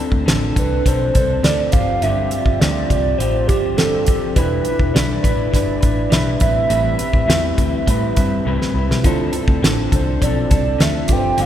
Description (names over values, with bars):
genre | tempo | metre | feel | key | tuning
indie pop, bedroom pop | 103 BPM | 4/4 | straight | D dorian | A4 = 442 Hz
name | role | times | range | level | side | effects
electric guitar through a small old amp | accompaniment | 0.0-11.5 s | G2 to B4 | -22 LUFS | left 3 dB | vibrato effect
vintage muted picked electric bass | bass | 0.1-11.5 s | E1 to A2 | -21 LUFS | equal | none
damped 70s drum kit | drums | 0.1-11.5 s | hi-hat, kick drum, snare drum | -18 LUFS | equal | none
warbly nostalgic lead | melody | 0.6-11.5 s | G4 to G5 | -21 LUFS | right 3 dB | chorus
tine electric piano | accompaniment | 9.0-11.5 s | D4 to C5 | -26 LUFS | right 8 dB | none
room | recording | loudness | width
moderate cathedral reverb, RT60 4.6 s | recorded in a church or concert hall | -14 LUFS | side -10 dB against mid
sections
0.0-11.5 A section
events
drum fill 8.5-9.0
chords
0.0 Dm7; 1.7 G7sus4; 4.4 Em7; 6.4 Am9; 9.0 Dm7